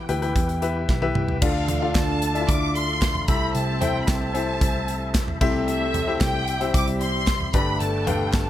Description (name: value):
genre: piano-driven pop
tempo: 113 BPM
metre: 4/4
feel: straight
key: unclear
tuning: A4 = 440 Hz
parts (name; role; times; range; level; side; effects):
- warm studio violin section; melody; 0.0-8.5 s; E5 to D6; -28 LUFS; equal; none
- bright upright piano; accompaniment; 0.0-8.5 s; G2 to G5; -26 LUFS; left 5 dB; none
- overdriven tonewheel organ; sustained chords; 0.0-8.5 s; C3 to G4; -35 LUFS; right 1 dB; chorus vibrato, fast rotary speaker
- vintage muted picked electric bass; bass; 0.1-8.5 s; G1 to E2; -27 LUFS; right 1 dB; none
- modern studio drum kit; drums; 0.1-8.5 s; crash cymbal, hi-hat, kick drum, snare drum, toms; -24 LUFS; right 1 dB; none
- warm French horn section; second line; 1.4-8.5 s; C3 to A4; -32 LUFS; right 4 dB; none
- group handclap; percussion; 2.0-8.5 s; none; -38 LUFS; right 7 dB; none
room: small room reverb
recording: none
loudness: -20 LUFS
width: side -12 dB against mid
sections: 0.0-1.4 A section; 1.4-8.5 B section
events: drum fill 0.9-1.4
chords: 0.0 Em; 1.4 Dm; 3.3 Am/C; 5.4 C; 7.5 Gadd9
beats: 0.36 0.89 | 1.42 1.96 2.49 3.02 | 3.55 4.08 4.61 5.15 | 5.68 6.21 6.74 7.27 | 7.80 8.34